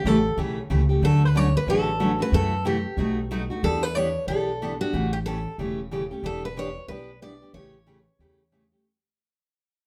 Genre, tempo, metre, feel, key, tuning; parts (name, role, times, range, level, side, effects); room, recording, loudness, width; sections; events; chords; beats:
acoustic string swing (jazz manouche); 184 BPM; 4/4; swing 61% on 8ths; A4 = 439 Hz
picked steel-string acoustic guitar; melody; 0.0-8.7 s; F#4 to D5; -30 LUFS; equal
upright bass; bass; 0.0-8.7 s; E1 to F#2; -28 LUFS; equal
picked steel-string acoustic guitar; accompaniment; 0.1-8.8 s; B2 to G4; -29 LUFS; equal
moderate studio reverb, RT60 0.7 s; -24 LUFS; mono
0.0-3.6 A section; 3.6-8.8 B section
fade-out 3.6-8.8
0.0 A7; 1.0 Dmaj7; 2.3 F#m7b5; 3.0 B7; 3.6 Em7; 4.9 A7; 6.2 Em7; 7.5 A7
0.04 0.36 0.69 | 1.01 1.34 1.67 1.99 | 2.32 2.64 2.97 3.29 | 3.62 3.95 4.27 4.60 | 4.92 5.25 5.58 5.90 | 6.23 6.56 6.88 7.21 | 7.54 7.86 8.19 8.52